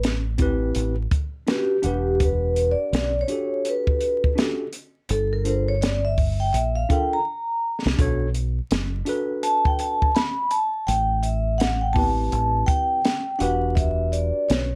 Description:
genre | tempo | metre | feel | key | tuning
hip hop, jazz-hop | 83 BPM | 4/4 | swing 63% on 16ths | unclear | A4 = 436 Hz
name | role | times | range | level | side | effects
deep dub fingered electric bass | bass | 0.0-14.8 s | E1 to C2 | -27 LUFS | equal | none
compact cocktail drum kit | drums | 0.0-14.7 s | hi-hat, kick drum, snare drum | -26 LUFS | equal | none
tine electric piano | accompaniment | 0.4-14.7 s | B3 to F#5 | -30 LUFS | equal | none
vibraphone with soft mallets | melody | 1.5-14.8 s | G4 to B5 | -26 LUFS | equal | none
room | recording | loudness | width
light reverb | vinyl crackle | -23 LUFS | mono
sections
0.0-14.8 A section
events
vibraphone solo 0.0-14.8; drum fill 7.3-8.0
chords
0.0 Am9; 1.8 Em9; 5.1 Gm9; 8.0 Bm7; 10.9 Am9; 13.4 Em9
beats
0.04 0.76 1.48 | 2.20 2.93 3.65 4.37 | 5.10 5.82 6.54 7.26 | 7.99 8.71 9.43 10.16 | 10.88 11.60 12.32 13.05 | 13.77 14.49

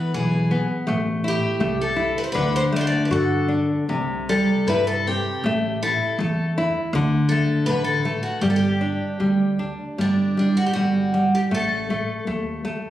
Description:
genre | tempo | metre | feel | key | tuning
fado-style ballad | 80 BPM | 2/4 | rubato | G major | A4 = 440 Hz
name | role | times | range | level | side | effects
picked twelve-string acoustic guitar | melody | 0.0-12.2 s | D4 to D5 | -25 LUFS | left 1 dB | none
nylon-string guitar | accompaniment | 0.0-12.9 s | C3 to F#4 | -21 LUFS | equal | none
upright bass | bass | 0.1-12.8 s | G1 to G2 | -27 LUFS | equal | none
room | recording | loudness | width
moderate recital hall reverb, RT60 1.4 s | recorded on a phone in the room, club reverb, compression | -19 LUFS | side -13 dB against mid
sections
0.0-10.0 A section; 10.0-12.9 B section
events
none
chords
0.0 E5; 0.9 Am; 2.4 D; 3.9 C; 5.4 A5; 6.9 D5; 8.4 G5; 10.0 Dadd11/G; 11.5 N.C.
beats
0.14 | 0.88 1.61 | 2.35 3.10 | 3.88 4.67 | 5.43 6.18 | 6.93 7.67 | 8.42 9.20 | 9.98 10.75 | 11.51 12.26

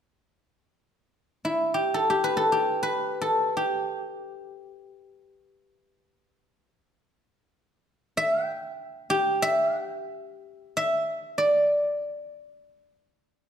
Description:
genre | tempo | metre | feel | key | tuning
chinese traditional | free time | none | none | G gong mode | A4 = 440 Hz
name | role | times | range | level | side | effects
guzheng | solo | 1.4-13.5 s | E4 to G5 | -24 LUFS | equal | none
room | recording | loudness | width
moderate recital hall reverb, RT60 1.5 s | none | -23 LUFS | side -8 dB against mid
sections
0.9-11.4 A section; 11.4-13.5 B section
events
none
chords
none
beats
free time

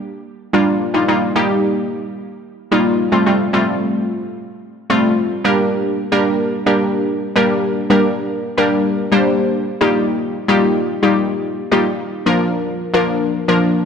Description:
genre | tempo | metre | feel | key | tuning
pop | 110 BPM | 4/4 | straight | G minor | A4 = 442 Hz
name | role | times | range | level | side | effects
glassy wavetable pluck | solo | 0.0-13.9 s | F3 to C5 | -14 LUFS | equal | chorus
room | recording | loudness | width
wet echo chamber reverb, RT60 2.4 s | none | -14 LUFS | side -6 dB against mid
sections
0.0-5.3 A section; 5.3-13.9 B section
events
build-up 0.0-5.3; drop 5.3-13.9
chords
0.0 Gm; 0.9 Ebadd9; 3.1 Fadd9; 5.3 Gm; 9.7 Ebadd9; 11.8 Bb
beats
0.39 | 0.94 1.48 2.03 2.57 | 3.12 3.67 4.21 4.76 | 5.30 5.85 6.39 6.94 | 7.48 8.03 8.57 9.12 | 9.66 10.21 10.76 11.30 | 11.85 12.39 12.94 13.48

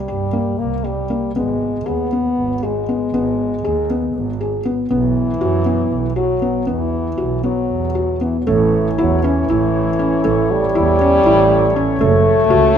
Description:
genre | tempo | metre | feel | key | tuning
contemporary instrumental, chamber music in an uneven meter | 237 BPM (eighths) | 7/8 | straight | unclear | A4 = 440 Hz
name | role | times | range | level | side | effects
mellow French horn | second line | 0.0-12.8 s | E3 to B3 | -19 LUFS | left 2 dB | none
felt-muted upright piano | arpeggios | 0.1-12.8 s | A3 to G#4 | -19 LUFS | left 1 dB | none
warm double bass | bass | 0.1-12.8 s | F#1 to G2 | -21 LUFS | right 5 dB | none
clear woodwind section | sustained chords | 8.5-12.8 s | A3 to C#5 | -24 LUFS | right 1 dB | none
room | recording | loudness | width
moderate concert hall reverb, RT60 1.9 s | minimal, uncompressed stereo recording | -15 LUFS | side -8 dB against mid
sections
0.0-8.5 A section; 8.5-12.8 B section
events
none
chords
0.0 C7(no3); 1.4 G#m; 4.9 Bsus4; 6.7 Esus2; 8.5 A; 12.0 F#m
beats
0.08 0.33 0.59 0.85 1.10 | 1.36 1.61 1.87 2.12 2.38 2.63 2.89 | 3.15 3.40 3.65 3.90 4.15 4.41 4.66 | 4.91 5.16 5.41 5.67 5.92 6.17 6.42 | 6.68 6.93 7.19 7.44 7.70 7.96 8.22 | 8.47 8.73 8.99 9.24 9.49 9.74 10.00 | 10.25 10.50 10.75 11.00 11.25 11.50 11.76 | 12.00 12.25 12.50 12.75

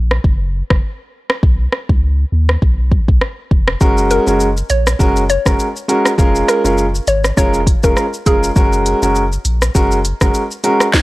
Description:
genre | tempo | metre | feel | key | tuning
dancehall | 101 BPM | 4/4 | swing 56% on 16ths | F# major | A4 = 440 Hz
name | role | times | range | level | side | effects
punchy sub bass | bass | 0.0-10.3 s | E#1 to D#2 | -17 LUFS | equal | none
afro-pop drum kit | drums | 0.1-11.0 s | hi-hat, kick drum, rim click, shaker, snare drum | -14 LUFS | equal | none
warm grand piano | accompaniment | 3.8-10.9 s | G#3 to A#4 | -15 LUFS | right 1 dB | sidechain pumping
hollow square pluck | melody | 4.1-8.4 s | G#4 to C#5 | -19 LUFS | equal | chorus, analog delay
room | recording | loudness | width
little or no reverb | dry, gritty hardware recording, cassette tape | -12 LUFS | side -19 dB against mid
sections
0.0-11.0 A section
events
break 0.0-3.8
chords
0.0 F#; 1.4 B; 3.8 F#add9; 6.2 C#6/E#; 8.6 F#add9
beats
0.24 0.84 | 1.43 2.02 2.62 3.21 | 3.81 4.40 5.00 5.59 | 6.18 6.78 7.37 7.96 | 8.56 9.15 9.75 10.34 | 10.94

